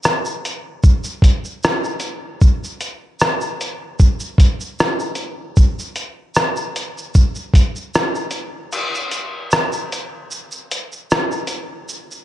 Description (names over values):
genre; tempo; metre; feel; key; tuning
hip hop; 76 BPM; 4/4; swing 55% on 16ths; none; none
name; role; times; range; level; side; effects
lo-fi sampler-style drum kit; drums; 0.0-12.2 s; crash cymbal, hi-hat, kick drum, rim click, shaker; -16 LUFS; equal; none
room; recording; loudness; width
light reverb; cassette tape; -16 LUFS; side -14 dB against mid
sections
0.0-8.7 A section; 8.7-12.2 B section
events
break 8.7-12.2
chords
none